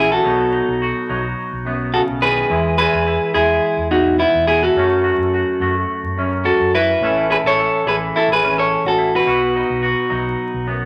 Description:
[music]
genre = highlife guitar band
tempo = 106 BPM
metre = 4/4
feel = swing 53% on 16ths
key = unclear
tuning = A4 = 440 Hz
[part]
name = clean electric guitar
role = melody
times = 0.0-10.9 s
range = B3 to C#5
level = -18 LUFS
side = equal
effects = none
[part]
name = clean electric guitar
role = accompaniment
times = 0.0-10.9 s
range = F#2 to A4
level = -24 LUFS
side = equal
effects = spring reverb
[part]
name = fingered electric bass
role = bass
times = 0.0-10.9 s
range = A1 to F#2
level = -29 LUFS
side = equal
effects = none
[sound]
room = wet studio reverb, RT60 0.8 s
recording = vinyl crackle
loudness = -17 LUFS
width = mono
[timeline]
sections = 0.0-10.9 A section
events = none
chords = 0.2 B; 2.5 E; 4.7 F#m; 7.0 A; 9.3 B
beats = | 0.24 0.81 1.37 1.93 | 2.50 3.06 3.62 4.19 | 4.75 5.31 5.88 6.44 | 7.00 7.57 8.13 8.69 | 9.26 9.82 10.38

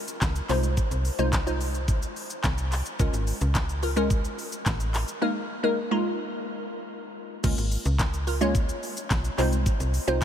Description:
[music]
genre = dance-pop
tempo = 108 BPM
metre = 4/4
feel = straight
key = Db major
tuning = A4 = 440 Hz
[part]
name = glassy wavetable pluck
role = accompaniment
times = 0.0-10.2 s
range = Ab3 to Db5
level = -29 LUFS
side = equal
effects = chorus, sidechain pumping
[part]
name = pop drum kit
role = drums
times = 0.1-10.2 s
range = crash cymbal, handclaps, hi-hat, kick drum, shaker, snare drum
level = -28 LUFS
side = equal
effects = none
[part]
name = slap-like FM bass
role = bass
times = 0.2-10.2 s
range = Ab1 to Db2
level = -27 LUFS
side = equal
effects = sidechain pumping
[sound]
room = light reverb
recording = none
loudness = -24 LUFS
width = side -10 dB against mid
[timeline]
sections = 0.0-7.4 A section; 7.4-10.2 A section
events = break 5.2-7.4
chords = 0.5 Fm7/C; 3.0 Db6; 5.2 Absus2; 7.4 Db6; 9.4 Fm7/C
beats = 0.22 | 0.77 1.33 1.88 2.44 | 3.00 3.55 4.11 4.66 | 5.22 5.77 6.33 6.88 | 7.44 8.00 8.55 9.11 | 9.66 10.22

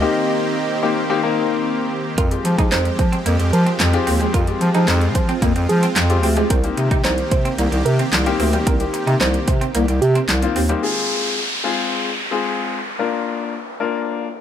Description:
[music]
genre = dance-pop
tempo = 111 BPM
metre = 4/4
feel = straight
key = F dorian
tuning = A4 = 440 Hz
[part]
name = soft struck synth lead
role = melody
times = 0.0-1.3 s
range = Eb5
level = -27 LUFS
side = right 3 dB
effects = chorus, digital delay
[part]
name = clear grand piano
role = accompaniment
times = 0.0-14.2 s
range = Ab3 to Bb4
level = -22 LUFS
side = left 6 dB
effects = sidechain pumping
[part]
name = supersaw pad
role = sustained chords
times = 0.0-10.8 s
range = Eb3 to G4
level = -25 LUFS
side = right 1 dB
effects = sidechain pumping
[part]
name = soft round pluck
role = melody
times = 2.2-10.4 s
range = G4 to C5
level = -25 LUFS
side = right 5 dB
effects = chorus, digital delay
[part]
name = electric guitar at the edge of break-up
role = riff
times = 2.2-10.8 s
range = G3 to F4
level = -26 LUFS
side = right 2 dB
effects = lush chorus
[part]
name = mellow bass clarinet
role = bass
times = 2.2-10.7 s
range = C2 to F3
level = -18 LUFS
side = equal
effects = sidechain pumping
[part]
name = pop drum kit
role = drums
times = 2.2-10.8 s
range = handclaps, hi-hat, kick drum, snare drum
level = -20 LUFS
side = equal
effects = overdrive
[part]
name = downlifter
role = sound effects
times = 10.8-14.4 s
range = none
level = -24 LUFS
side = equal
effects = none
[sound]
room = light reverb, digital ambience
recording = none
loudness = -16 LUFS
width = side -10 dB against mid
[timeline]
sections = 0.0-2.2 A section; 2.2-10.8 B section; 10.8-14.4 C section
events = break 0.0-2.2; kick muted 9.7-10.8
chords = 0.0 Cm7; 2.2 Fmadd9; 6.5 Cm7; 10.8 Fm; 13.0 Bb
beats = | 0.02 0.56 1.10 1.64 | 2.18 2.72 3.26 3.80 | 4.34 4.88 5.42 5.96 | 6.50 7.04 7.58 8.13 | 8.67 9.21 9.75 10.29 | 10.83 11.37 11.91 12.45 | 12.99 13.53 14.07

